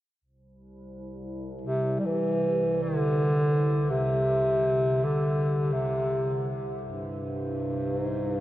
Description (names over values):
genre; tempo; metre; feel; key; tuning
world meditative, free-time meditation music; free time; none; none; C major pentatonic; A4 = 440 Hz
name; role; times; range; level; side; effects
glassy FM pad; drone; 0.7-8.4 s; C2; -34 LUFS; equal; ensemble chorus, built-in reverb
mellow bass clarinet; melody; 1.6-8.4 s; G2 to G3; -25 LUFS; equal; tape echo
room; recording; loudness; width
wet huge ambient reverb, RT60 8.2 s; worn, warbling old tape, cassette tape, warbly pitch drift; -24 LUFS; side -14 dB against mid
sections
0.2-8.4 A section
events
none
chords
none